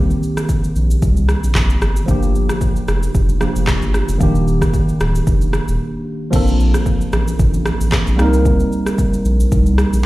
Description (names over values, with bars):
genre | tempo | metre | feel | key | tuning
afrobeats | 113 BPM | 4/4 | swing 55% on 16ths | unclear | A4 = 442 Hz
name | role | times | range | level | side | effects
barky tine electric piano | accompaniment | 0.0-10.1 s | Eb3 to Bb4 | -19 LUFS | right 1 dB | phaser
saturated sub bass | bass | 0.0-10.0 s | D1 to C2 | -16 LUFS | equal | none
afro-pop drum kit | drums | 0.1-10.0 s | crash cymbal, handclaps, kick drum, rim click, shaker | -18 LUFS | equal | none
room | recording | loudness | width
little or no reverb | played on a big sound system in a bare room, large studio reverb | -14 LUFS | side -18 dB against mid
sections
0.0-6.3 A section; 6.3-10.1 B section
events
break 5.8-6.3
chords
0.0 Cm7; 2.1 Gm7; 4.2 Ebmaj7; 6.3 Bbmaj9; 8.2 Cm7